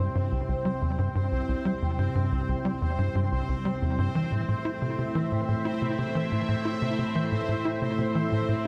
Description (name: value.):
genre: ambient, sequencer-driven space music.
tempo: 90 BPM.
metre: 4/4.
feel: straight.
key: unclear.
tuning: A4 = 440 Hz.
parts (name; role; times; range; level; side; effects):
sweeping resonant pad; sustained chords; 0.0-8.7 s; A2 to G5; -33 LUFS; equal; chorus, shimmer reverb.
tight sequencer bass; riff; 0.0-8.7 s; C2 to E4; -30 LUFS; equal; subtle chorus, analog delay.
bubbling stepped-filter texture; texture; 0.0-8.7 s; C4 to C5; -38 LUFS; equal; chorus, built-in reverb, shimmer reverb.
room: wet huge ambient reverb, RT60 7.5 s.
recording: none.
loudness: -28 LUFS.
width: mono.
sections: 0.0-8.7 A section.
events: fade-in on analog synth pad 0.0-8.7.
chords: 0.0 C; 4.2 Am.